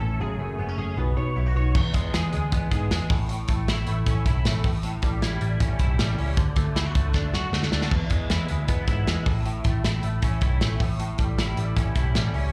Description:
jangly indie pop; 156 BPM; 4/4; straight; A4 = 440 Hz
fingerpicked steel-string acoustic guitar; accompaniment; 0.0-1.8 s; F#2 to C#5; -36 LUFS; equal; slapback echo
direct-recorded clean electric guitar; arpeggios; 0.0-12.5 s; E2 to C#5; -33 LUFS; equal; ensemble chorus, slapback echo
vintage muted picked electric bass; bass; 0.0-12.5 s; F#1 to B2; -27 LUFS; equal
loose indie drum kit; drums; 1.8-12.4 s; crash cymbal, hi-hat, kick drum, snare drum; -28 LUFS; equal
little or no reverb; live gig heard through the venue's PA, club reverb; -24 LUFS; mono
0.0-1.7 A section; 1.7-12.5 B section
drum fill 7.1-7.9
0.2 F#madd9; 1.0 Badd9; 1.7 E; 3.1 A; 4.6 A7; 6.4 D; 7.9 E; 9.3 A; 10.8 A7

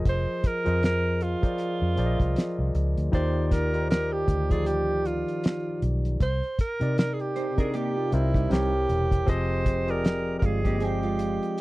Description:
lush 1970s-style soul; 78 BPM; 4/4; swing 58% on 16ths; Eb major; A4 = 442 Hz
barky tine electric piano; accompaniment; 0.0-11.6 s; C3 to Eb5; -30 LUFS; left 2 dB; overdrive
clear alto saxophone; melody; 0.1-11.6 s; Fb4 to C5; -29 LUFS; right 2 dB
vintage muted fingered electric bass; bass; 0.1-11.4 s; E1 to C3; -27 LUFS; equal
cloth-damped thuddy drum kit; drums; 0.1-11.6 s; hi-hat, kick drum, snare drum; -24 LUFS; equal
mellow electric guitar; riff; 7.4-11.6 s; G3 to C5; -32 LUFS; right 5 dB; ensemble chorus
little or no reverb; dry, close 1970s-style studio recording; -23 LUFS; side -19 dB against mid
0.0-11.6 A section
0.0 Bb9sus4/F; 3.1 Ebmaj9; 6.2 Cm7; 8.5 C7b9; 9.3 Fm7

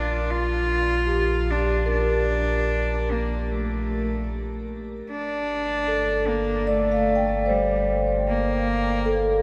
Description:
ambient; 75 BPM; 4/4; straight; A4 = 440 Hz
rich cello; melody; 0.0-9.4 s; G3 to F4; -28 LUFS; equal; shimmer reverb, tape echo
vibraphone with soft mallets; arpeggios; 0.0-9.4 s; G4 to G5; -28 LUFS; equal; shimmer reverb, tape echo
warm sub bass; bass; 0.0-9.4 s; G1 to Bb1; -30 LUFS; equal
wet cathedral reverb, RT60 6.0 s; dreamy mix soaked in reverb; -24 LUFS; mono
0.0-9.4 A section
0.0 Bbmaj7; 5.1 Gm7

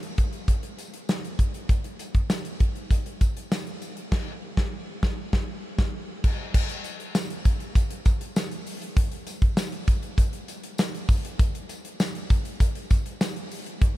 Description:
pop; 99 BPM; 4/4; straight
modern studio drum kit; drums; 0.0-14.0 s; crash cymbal, hi-hat, kick drum, snare drum, tambourine; -24 LUFS; equal
tambourine; percussion; 0.2-13.7 s; -45 LUFS; left 3 dB
small room ambience; -24 LUFS; side -16 dB against mid
0.0-6.5 A section; 6.5-14.0 B section
band accent 4.1-6.5

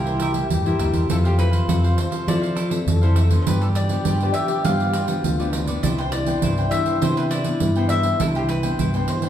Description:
samba and choro; 101 BPM; 4/4; straight; C major; A4 = 440 Hz
cavaquinho; melody; 0.0-9.3 s; G4 to F5; -27 LUFS; left 2 dB
breathy trombone; second line; 0.0-9.3 s; D4 to A4; -28 LUFS; left 2 dB
cavaquinho; accompaniment; 0.0-9.3 s; E4 to G5; -32 LUFS; right 2 dB
nylon-string guitar; accompaniment; 0.0-9.3 s; G2 to A4; -27 LUFS; left 2 dB
fingered electric bass with an envelope filter; bass; 0.0-9.0 s; C2 to G3; -22 LUFS; equal
pandeiro; percussion; 0.1-9.3 s; -25 LUFS; right 4 dB
wet large studio reverb, RT60 1.3 s; heard from further back in the room; -18 LUFS; side -10 dB against mid
0.0-9.3 A section
0.0 C7; 1.1 Fmaj7; 3.5 G7; 5.8 Cmaj9

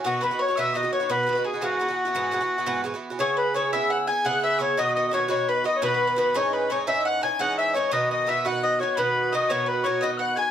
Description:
celtic folk, Celtic slip jig; 114 BPM (dotted quarters); 9/8; straight; E major; A4 = 438 Hz
bowl-back mandolin; second line; 0.0-10.5 s; F#4 to G#5; -30 LUFS; equal
mid whistle; second line; 0.0-10.5 s; F#5 to G#6; -32 LUFS; left 5 dB
Irish bouzouki; accompaniment; 0.0-10.5 s; G#2 to G#4; -28 LUFS; right 4 dB
accordion; melody; 0.1-10.5 s; F#4 to G#5; -24 LUFS; left 2 dB
moderate studio reverb, RT60 0.5 s; -21 LUFS; side -9 dB against mid
0.0-3.2 A section; 3.2-10.5 B section
0.0 B; 1.6 Eadd9; 3.2 E6; 4.8 B; 6.3 C#madd9; 7.9 B

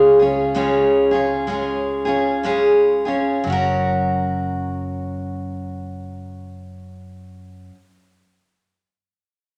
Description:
acoustic folk duo or small band; 58-67 BPM; 4/4; swing 61% on 8ths; F# major; A4 = 439 Hz
picked steel-string acoustic guitar; accompaniment; 0.0-7.8 s; C#3 to A#4; -20 LUFS; equal
fretless electric bass; bass; 0.0-7.7 s; F#1 to C#2; -33 LUFS; equal
wet large studio reverb, RT60 1.3 s; -19 LUFS; mono
0.0-3.5 A section; 3.5-7.6 B section
slowing down 0.0-3.5
0.0 C#; 3.5 F#

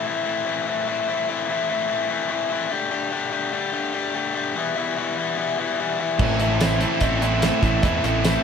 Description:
classic rock; 146 BPM; 4/4; straight; A minor; A4 = 440 Hz
biting overdriven guitar; riff; 0.0-8.4 s; E2 to G4; -22 LUFS; left 4 dB
crunchy overdriven guitar; riff; 6.2-8.4 s; A2 to E4; -25 LUFS; right 3 dB
distorted electric guitar; riff; 6.2-8.4 s; A2 to E4; -26 LUFS; right 10 dB; overdrive
fingered electric bass; bass; 6.2-8.4 s; A1 to E2; -25 LUFS; equal
damped 70s drum kit; drums; 6.2-8.3 s; crash cymbal, hi-hat, kick drum, snare drum, tambourine; -23 LUFS; right 1 dB
cowbell; percussion; 6.2-8.3 s; -35 LUFS; right 8 dB
moderate studio ambience, RT60 0.5 s; band playing live in one room; -20 LUFS; side -6 dB against mid
0.0-8.4 A section
0.0 Am; 2.7 Dsus4; 4.6 Em; 6.2 Am

